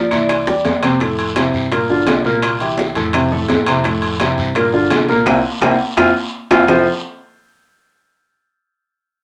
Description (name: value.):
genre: Afro-Cuban jazz.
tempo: 169 BPM.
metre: 4/4.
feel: straight.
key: F major.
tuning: A4 = 437 Hz.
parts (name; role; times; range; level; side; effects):
vibraphone with medium mallets; melody; 0.0-0.8 s; D5; -22 LUFS; equal; none.
buzzing marimba with medium hard mallets; second line; 0.0-0.8 s; Bb3; -26 LUFS; equal; none.
warm baby grand piano; accompaniment; 0.0-6.9 s; A2 to C5; -18 LUFS; equal; none.
upright bass; bass; 0.0-6.8 s; F1 to G2; -30 LUFS; equal; none.
bongos; percussion; 0.1-6.8 s; none; -26 LUFS; equal; none.
guiro; percussion; 0.1-6.8 s; none; -31 LUFS; equal; none.
timbales; percussion; 0.1-6.8 s; none; -22 LUFS; equal; none.
claves; percussion; 0.3-6.8 s; none; -30 LUFS; equal; none.
congas; percussion; 0.3-6.8 s; none; -28 LUFS; equal; none.
room: wet studio ambience, RT60 0.5 s.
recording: none.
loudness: -16 LUFS.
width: mono.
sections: 0.0-1.0 A section; 1.0-6.7 B section; 6.7-8.1 C section.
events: drum fill 0.5-1.0, 5.8-6.7; band accent 5.3-6.7.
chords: 0.3 C9; 1.0 Fmaj7; 1.7 Gm7; 2.4 C7; 3.1 Fmaj7; 4.6 Gm7; 5.3 C7; 6.0 F5; 6.7 Fmaj7.